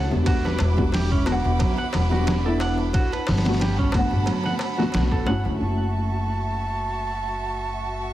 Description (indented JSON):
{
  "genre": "trip hop",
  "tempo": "90 BPM",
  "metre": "4/4",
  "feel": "swing 54% on 16ths",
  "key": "F# phrygian",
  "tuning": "A4 = 440 Hz",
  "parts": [
    { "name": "felt-muted upright piano", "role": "accompaniment", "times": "0.0-8.1 s", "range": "D3 to F#5", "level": "-27 LUFS", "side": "left 1 dB", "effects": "tremolo, tape echo" },
    { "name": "rich studio violin section", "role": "sustained chords", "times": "0.0-8.1 s", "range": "E4 to D6", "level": "-33 LUFS", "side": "right 2 dB", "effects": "none" },
    { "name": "semi-hollow electric guitar", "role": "arpeggios", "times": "0.0-5.4 s", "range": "F#3 to F#5", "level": "-30 LUFS", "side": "right 3 dB", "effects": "digital delay" },
    { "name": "upright bass", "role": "bass", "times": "0.0-8.1 s", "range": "E1 to D2", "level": "-25 LUFS", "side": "equal", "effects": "none" },
    { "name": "flickering grainy texture", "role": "texture", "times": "0.0-5.6 s", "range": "F#4", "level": "-39 LUFS", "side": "left 1 dB", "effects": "none" },
    { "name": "darbuka", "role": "percussion", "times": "0.1-5.6 s", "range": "none", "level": "-35 LUFS", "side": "left 2 dB", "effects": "none" },
    { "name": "trip hop sampler-style drum kit", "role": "drums", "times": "0.3-5.3 s", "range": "hi-hat, kick drum, ride cymbal, snare drum", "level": "-25 LUFS", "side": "equal", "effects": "none" },
    { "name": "wooden flute", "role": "melody", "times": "5.6-8.1 s", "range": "A5", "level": "-29 LUFS", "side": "right 3 dB", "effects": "tape echo" }
  ],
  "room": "light reverb, small room ambience",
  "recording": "heavily compressed radio sound",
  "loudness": "-20 LUFS",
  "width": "side -14 dB against mid",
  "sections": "0.0-5.6 A section; 5.6-8.1 B section",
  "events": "none",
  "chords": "0.0 Em7; 2.9 Gmaj9; 5.6 F#m7"
}